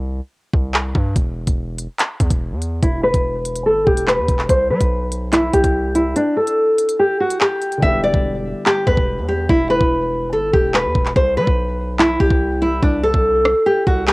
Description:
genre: hip hop, drill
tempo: 144 BPM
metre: 4/4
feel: half-time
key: E minor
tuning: A4 = 441 Hz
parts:
  - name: distorted 808-style bass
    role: bass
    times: 0.0-14.1 s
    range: E1 to G3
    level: -23 LUFS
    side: equal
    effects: distortion
  - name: drill drum kit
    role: drums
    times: 0.5-14.1 s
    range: handclaps, hi-hat, kick drum, rim click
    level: -18 LUFS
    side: equal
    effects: cassette tape
  - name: nylon-string guitar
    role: melody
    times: 2.8-14.1 s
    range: D4 to E5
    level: -16 LUFS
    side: equal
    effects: low-pass filter, cassette tape
  - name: dark baby grand piano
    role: accompaniment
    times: 7.8-11.2 s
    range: D3 to G4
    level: -27 LUFS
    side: left 1 dB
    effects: low-pass filter, cassette tape
room: small room ambience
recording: home recording on cassette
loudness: -15 LUFS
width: side -23 dB against mid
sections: 0.0-14.1 A section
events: break 0.0-2.8; kick muted 6.2-7.8; hi-hats muted 7.8-14.1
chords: 0.0 C5; 1.2 E5; 4.5 C5; 7.8 Em7; 11.2 C5

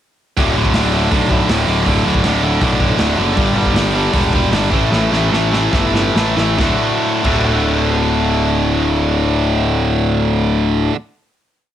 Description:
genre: punk rock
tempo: 137-161 BPM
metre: 4/4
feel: straight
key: D major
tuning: A4 = 440 Hz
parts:
  - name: distorted electric guitar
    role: riff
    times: 0.4-10.9 s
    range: D2 to F#4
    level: -18 LUFS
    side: left 8 dB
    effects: overdrive
  - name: tight distorted guitar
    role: riff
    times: 0.4-11.0 s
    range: D2 to A3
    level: -18 LUFS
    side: right 9 dB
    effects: distortion
  - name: fuzz picked electric bass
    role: bass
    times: 0.4-10.9 s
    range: D1 to B1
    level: -18 LUFS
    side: equal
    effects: overdrive
  - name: raw garage drum kit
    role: drums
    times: 0.4-7.4 s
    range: crash cymbal, hi-hat, kick drum, snare drum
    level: -20 LUFS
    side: equal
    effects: none
room: little or no reverb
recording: home recording on cassette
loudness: -13 LUFS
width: side -10 dB against mid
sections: 0.4-6.6 verse; 6.6-10.1 final chord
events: slowing down 3.4-6.6; drum fill 4.9-6.6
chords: 0.4 D5; 3.4 G5; 4.7 A5; 6.6 D

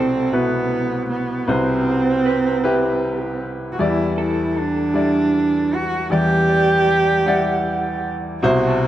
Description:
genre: acoustic folk-pop ballad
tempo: 52 BPM (dotted quarters)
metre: 6/8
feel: straight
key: unclear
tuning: A4 = 440 Hz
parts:
  - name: bright upright piano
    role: melody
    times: 0.0-8.9 s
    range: C2 to D5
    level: -20 LUFS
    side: left 1 dB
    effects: none
  - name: warm cello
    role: second line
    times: 0.0-8.9 s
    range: B3 to G4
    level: -20 LUFS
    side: right 2 dB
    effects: none
  - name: electric guitar through a small old amp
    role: arpeggios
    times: 0.0-8.9 s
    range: A4 to A5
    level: -27 LUFS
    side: right 3 dB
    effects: tremolo, tape echo
room: light reverb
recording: dark, warm production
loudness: -16 LUFS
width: side -12 dB against mid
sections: 0.0-8.4 A section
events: cello solo 0.0-8.4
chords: 0.0 Cmaj7; 3.8 Em7

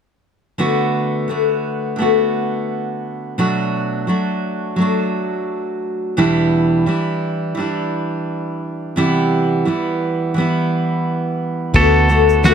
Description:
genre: acoustic pop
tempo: 86 BPM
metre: 4/4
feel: swing 55% on 16ths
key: unclear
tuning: A4 = 440 Hz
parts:
  - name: picked steel-string acoustic guitar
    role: accompaniment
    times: 0.6-12.5 s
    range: E2 to F#4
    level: -16 LUFS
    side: equal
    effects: none
  - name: vintage muted fingered electric bass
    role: bass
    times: 11.7-12.5 s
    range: D2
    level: -16 LUFS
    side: equal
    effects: none
  - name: cloth-damped thuddy drum kit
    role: drums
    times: 11.7-12.5 s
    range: crash cymbal, kick drum, shaker, snare drum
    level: -18 LUFS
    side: left 2 dB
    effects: none
  - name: clean lap steel guitar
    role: melody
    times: 11.8-12.5 s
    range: F#4 to A4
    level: -15 LUFS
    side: equal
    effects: none
room: little or no reverb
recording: close, detailed microphones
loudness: -16 LUFS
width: side -7 dB against mid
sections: 0.6-11.7 A section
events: none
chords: 0.6 D6; 3.4 Bm7; 6.2 Em7; 9.0 Cmaj7; 11.7 D6

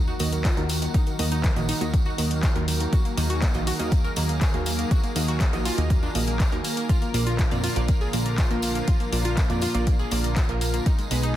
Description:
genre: progressive house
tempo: 121 BPM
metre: 4/4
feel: straight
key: Eb harmonic minor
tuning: A4 = 441 Hz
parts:
  - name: lush unison pad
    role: sustained chords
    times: 0.0-11.4 s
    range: Cb3 to Bb4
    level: -32 LUFS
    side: left 1 dB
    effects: chorus, vintage 12-bit sampler grit, sidechain pumping
  - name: wide unison pluck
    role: arpeggios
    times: 0.0-11.3 s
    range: Eb3 to Bb4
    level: -32 LUFS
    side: equal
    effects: sidechain pumping, digital delay
  - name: plucky analog bass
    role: bass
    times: 0.0-11.4 s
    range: Bb1 to F2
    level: -27 LUFS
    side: equal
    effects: sidechain pumping
  - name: impact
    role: sound effects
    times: 0.3-0.9 s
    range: none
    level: barely audible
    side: none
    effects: none
  - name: tambourine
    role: percussion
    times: 0.1-11.3 s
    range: none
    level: -37 LUFS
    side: right 4 dB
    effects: none
  - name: wide unison pluck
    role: stabs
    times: 0.2-11.2 s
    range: Bb2 to Eb5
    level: -30 LUFS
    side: right 4 dB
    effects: sidechain pumping, digital delay
  - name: deep house drum kit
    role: drums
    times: 0.2-11.3 s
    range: handclaps, hi-hat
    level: -32 LUFS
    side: left 2 dB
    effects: sidechain pumping on hats, sidechain pumping on cymbals
  - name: electronic kick drum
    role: drums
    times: 0.4-11.0 s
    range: none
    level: -22 LUFS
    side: equal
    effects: none
room: light reverb, digital ambience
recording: dense, heavily limited modern master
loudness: -21 LUFS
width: side -13 dB against mid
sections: 0.0-11.4 A section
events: impact 0.0-0.9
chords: 0.0 Ebm; 6.9 Bb; 10.9 Abm

